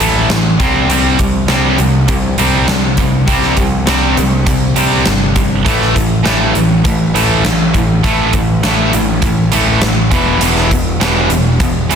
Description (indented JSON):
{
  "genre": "hard rock",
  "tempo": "101 BPM",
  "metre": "4/4",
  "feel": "straight",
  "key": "A minor",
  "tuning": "A4 = 440 Hz",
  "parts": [
    { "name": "distorted electric guitar", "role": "riff", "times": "0.0-12.0 s", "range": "E2 to C4", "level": "-16 LUFS", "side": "left 9 dB", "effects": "distortion" },
    { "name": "tight distorted guitar", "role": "riff", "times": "0.0-12.0 s", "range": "E2 to C4", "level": "-16 LUFS", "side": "right 10 dB", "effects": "distortion" },
    { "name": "growling picked electric bass", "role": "bass", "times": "0.0-12.0 s", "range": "E1 to C2", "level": "-17 LUFS", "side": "equal", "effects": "overdrive" },
    { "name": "huge arena drum kit", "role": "drums", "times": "0.0-12.0 s", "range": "hi-hat, kick drum, snare drum", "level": "-15 LUFS", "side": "equal", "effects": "none" }
  ],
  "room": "light reverb, small room ambience",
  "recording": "dense, heavily limited modern master",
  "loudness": "-10 LUFS",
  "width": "side -7 dB against mid",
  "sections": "0.0-12.0 A section",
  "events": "none",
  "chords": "0.0 A5; 0.6 C5; 5.7 A5; 10.1 E5"
}